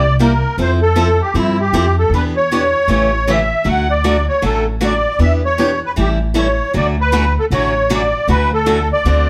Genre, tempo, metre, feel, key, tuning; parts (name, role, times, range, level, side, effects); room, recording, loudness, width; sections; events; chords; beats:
acoustic string swing (jazz manouche); 156 BPM; 4/4; swing 61% on 8ths; D major; A4 = 440 Hz
musette accordion; melody; 0.0-9.3 s; E4 to F#5; -18 LUFS; equal
picked steel-string acoustic guitar; accompaniment; 0.0-9.3 s; C3 to A4; -22 LUFS; equal
upright bass; bass; 0.0-9.3 s; A1 to G2; -19 LUFS; equal
moderate studio reverb, RT60 0.8 s; heard from further back in the room; -15 LUFS; mono
0.0-9.3 A section
0.0 C9; 0.6 Fmaj9; 2.1 Em7; 2.9 A7; 3.7 Dmaj7; 5.2 Em7; 6.0 A7; 6.7 Dmaj7
0.19 | 0.58 0.96 1.35 1.73 | 2.12 2.50 2.89 3.27 | 3.66 4.04 4.43 4.81 | 5.20 5.58 5.97 6.35 | 6.74 7.12 7.51 7.89 | 8.28 8.66 9.05